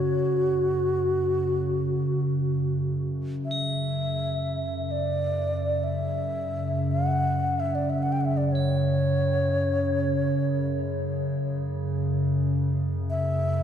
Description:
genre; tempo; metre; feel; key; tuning
world meditative, free-time meditation music; free time; none; none; unclear; A4 = 440 Hz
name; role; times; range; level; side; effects
low xiao; melody; 0.0-13.6 s; F#4 to G5; -28 LUFS; equal; tape echo
warbly tape-like pad; drone; 0.0-13.6 s; F#2 to C#3; -26 LUFS; equal; chorus, built-in reverb
crotales; texture; 0.0-13.6 s; F#7 to B7; -37 LUFS; left 1 dB; none
room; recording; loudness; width
wet cathedral reverb, RT60 4.7 s; dark, warm production; -24 LUFS; side -8 dB against mid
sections
0.0-2.4 A section; 2.4-13.6 A section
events
none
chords
none

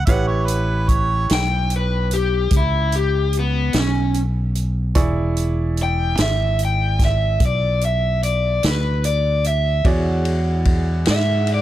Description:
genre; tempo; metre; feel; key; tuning
slow blues; 49 BPM (dotted quarters); 12/8; straight; E mixolydian; A4 = 440 Hz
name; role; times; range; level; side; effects
mellow harmonica; second line; 0.0-1.3 s; B4 to F#5; -24 LUFS; right 3 dB; overdrive
bright grand piano; accompaniment; 0.0-11.6 s; E4 to C#6; -28 LUFS; right 3 dB; none
fingered electric bass; bass; 0.0-11.6 s; E1 to G#2; -20 LUFS; equal; none
vintage drum kit; drums; 0.1-11.6 s; hi-hat, kick drum, ride cymbal, snare drum; -21 LUFS; equal; none
crunchy overdriven guitar; melody; 1.3-11.6 s; B3 to G5; -22 LUFS; left 2 dB; none
mellow saxophone section; sustained chords; 9.9-11.6 s; G#3 to F#5; -31 LUFS; equal; none
room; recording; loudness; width
studio ambience; none; -17 LUFS; side -13 dB against mid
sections
0.0-9.9 A section; 9.9-11.6 B section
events
overdriven electric guitar solo 9.9-11.6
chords
0.1 A9; 5.0 E6; 9.9 E13

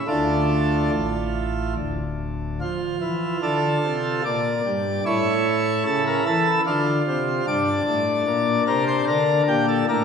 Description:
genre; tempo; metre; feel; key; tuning
classical, chorale-style piece for pipe organ; 74 BPM; 3/4; rubato; D minor; A4 = 441 Hz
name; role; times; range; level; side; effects
pipe organ, plenum; solo; 0.0-10.0 s; D1 to D5; -20 LUFS; equal; none
room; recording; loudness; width
wet concert hall reverb, RT60 1.7 s; minimal, uncompressed stereo recording; -20 LUFS; side -6 dB against mid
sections
0.0-2.6 A section; 2.6-10.0 A section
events
none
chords
0.1 Dm; 4.3 Gm/Bb; 5.1 A; 6.7 Dm; 7.5 Gm

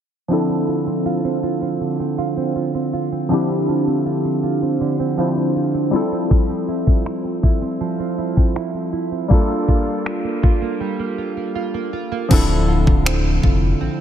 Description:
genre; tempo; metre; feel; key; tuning
contemporary R&B; 80 BPM; 4/4; straight; D minor; A4 = 440 Hz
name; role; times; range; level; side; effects
warm analog keys; accompaniment; 0.3-14.0 s; F3 to C5; -21 LUFS; left 2 dB; chorus
nylon-string guitar; arpeggios; 0.3-14.0 s; D3 to F4; -23 LUFS; right 6 dB; analog chorus, ping-pong delay
smooth R&B drum kit; drums; 6.3-13.6 s; crash cymbal, finger snaps, kick drum; -16 LUFS; left 1 dB; none
sub bass with octave; bass; 12.3-13.9 s; D1 to A1; -19 LUFS; left 1 dB; none
room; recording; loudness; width
light reverb, digital ambience; low-pass filter; -17 LUFS; side -9 dB against mid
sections
0.3-12.3 A section; 12.3-14.0 B section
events
filter sweep 0.3-12.3; break 10.8-12.3; hi-hats muted 12.3-14.0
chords
0.3 Dm7; 5.9 Fmaj7; 9.3 Gm9; 12.3 Dm7

